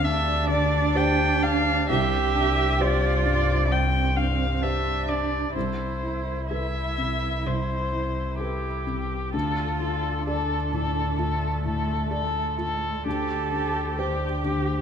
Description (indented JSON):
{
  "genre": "neoclassical piano and strings",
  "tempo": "65 BPM",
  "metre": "4/4",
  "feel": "rubato",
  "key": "D minor",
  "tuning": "A4 = 440 Hz",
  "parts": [
    { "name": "muted violin", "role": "melody", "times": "0.0-14.8 s", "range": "G4 to G5", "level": "-28 LUFS", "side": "left 3 dB", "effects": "none" },
    { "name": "muted cello", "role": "second line", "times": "0.0-14.8 s", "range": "A3 to A4", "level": "-29 LUFS", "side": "right 7 dB", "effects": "none" },
    { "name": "felt-muted upright piano", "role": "accompaniment", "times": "0.0-14.8 s", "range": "C2 to D5", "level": "-31 LUFS", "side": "left 1 dB", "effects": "none" },
    { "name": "hand-pumped harmonium", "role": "sustained chords", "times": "0.0-14.8 s", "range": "D4 to D5", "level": "-39 LUFS", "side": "right 3 dB", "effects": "none" },
    { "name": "muted double bass", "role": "bass", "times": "0.0-14.8 s", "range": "C2 to D2", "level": "-27 LUFS", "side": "left 1 dB", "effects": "none" }
  ],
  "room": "moderate scoring stage reverb, RT60 2.0 s",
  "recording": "minimal, uncompressed stereo recording",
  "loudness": "-22 LUFS",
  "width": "side -8 dB against mid",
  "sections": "0.0-14.8 A section",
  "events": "none",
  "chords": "0.0 Gsus4/D; 1.9 Csus2; 5.6 Amadd9/C; 9.3 Dm; 13.1 Gsus4/D"
}